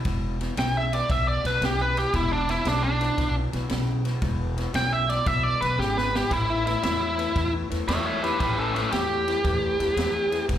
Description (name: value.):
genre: electric blues shuffle.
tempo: 115 BPM.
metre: 4/4.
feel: swing 68% on 8ths.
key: unclear.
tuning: A4 = 441 Hz.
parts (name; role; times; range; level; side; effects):
electric guitar through a small old amp; riff; 0.0-10.6 s; E2 to F#3; -32 LUFS; left 4 dB; wide subtle chorus, slapback echo.
swinging big-band drum kit; drums; 0.0-10.6 s; kick drum, ride cymbal, snare drum; -31 LUFS; equal; none.
upright bass; bass; 0.1-10.6 s; E1 to E2; -28 LUFS; equal; none.
biting lead guitar; melody; 0.6-10.4 s; C#4 to G5; -24 LUFS; equal; overdrive, slapback echo.
room: small room ambience.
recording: live gig heard through the venue's PA, club reverb.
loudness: -22 LUFS.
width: side -10 dB against mid.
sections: 0.0-10.6 A section.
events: lead electric guitar solo 0.0-10.6; drum fill 5.8-6.3.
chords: 0.0 E7(no3); 6.3 A7(no3).